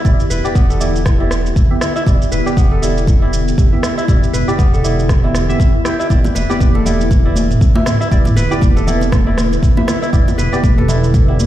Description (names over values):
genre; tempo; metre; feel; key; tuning
afro house; 119 BPM; 4/4; swing 58% on 16ths; E minor; A4 = 440 Hz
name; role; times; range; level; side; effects
ethereal airy pad; sustained chords; 0.0-11.5 s; D3 to B4; -22 LUFS; left 1 dB; ensemble chorus, built-in reverb, sidechain pumping
kora; arpeggios; 0.0-11.5 s; B3 to B4; -22 LUFS; equal; sidechain pumping, digital delay
deep mellow chord stab; stabs; 0.0-11.4 s; B3 to G5; -23 LUFS; right 3 dB; chorus, sidechain pumping, digital delay
electronic kick drum; drums; 0.0-11.3 s; none; -13 LUFS; equal; none
smooth synth bass; bass; 0.1-11.5 s; E1; -17 LUFS; equal; sidechain pumping
afro-pop drum kit; drums; 0.1-11.5 s; rim click, shaker, toms; -24 LUFS; right 1 dB; none
bongos; percussion; 6.2-10.4 s; none; -25 LUFS; right 2 dB; none
congas; percussion; 6.4-11.5 s; none; -22 LUFS; left 2 dB; none
room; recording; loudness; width
digital ambience; played on a big sound system in a bare room, large studio reverb; -11 LUFS; side -13 dB against mid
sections
0.0-11.5 A section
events
none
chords
0.0 Em7